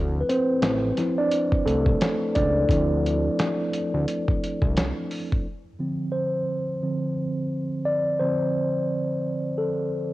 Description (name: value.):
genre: lo-fi hip hop.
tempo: 87 BPM.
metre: 4/4.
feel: swing 61% on 16ths.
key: D minor.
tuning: A4 = 439 Hz.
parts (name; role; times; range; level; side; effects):
mellow tine electric piano; accompaniment; 0.0-10.1 s; D3 to D5; -24 LUFS; equal; slow stereo tremolo, cassette tape.
fat analog bass; bass; 0.0-4.9 s; A1 to D2; -26 LUFS; equal; transformer saturation.
dusty soul sampler-style drum kit; drums; 0.3-5.4 s; hi-hat, kick drum, snare drum; -26 LUFS; equal; none.
room: light reverb.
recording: home recording on cassette.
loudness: -22 LUFS.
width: side -17 dB against mid.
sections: 0.0-5.4 A section; 5.4-10.1 B section.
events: tine electric piano solo 0.0-5.4, 5.4-10.1.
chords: 0.0 Dm9; 5.4 Dm7.